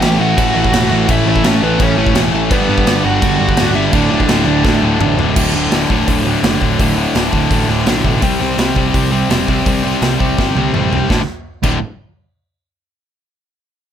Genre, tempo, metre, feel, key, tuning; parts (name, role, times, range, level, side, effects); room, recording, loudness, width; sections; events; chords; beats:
punk rock; 168 BPM; 4/4; straight; D major; A4 = 441 Hz
crunchy overdriven guitar; melody; 0.0-5.2 s; B3 to G5; -18 LUFS; right 2 dB
distorted electric guitar; riff; 0.0-11.8 s; D2 to C4; -16 LUFS; left 8 dB; overdrive
sludgy distorted guitar; riff; 0.0-11.8 s; D2 to C4; -18 LUFS; right 11 dB; overdrive
fuzz picked electric bass; bass; 0.0-11.8 s; D1 to C2; -20 LUFS; equal; overdrive
big rock drum kit; drums; 0.0-11.7 s; crash cymbal, hi-hat, kick drum, snare drum, toms; -18 LUFS; equal
light reverb; -11 LUFS; side -9 dB against mid
0.0-5.4 A section; 5.4-11.1 B section; 11.1-12.5 C section
drum fill 4.6-5.4, 10.4-11.1
0.0 A; 2.5 G; 3.9 D5; 8.2 C5; 11.1 D5
0.02 0.38 0.73 | 1.09 1.45 1.80 2.16 | 2.52 2.87 3.23 3.58 | 3.94 4.29 4.65 5.00 | 5.36 5.72 6.08 6.43 | 6.79 7.15 7.51 7.87 | 8.22 8.58 8.94 9.30 | 9.66 10.02 10.38 10.73 | 11.09 11.45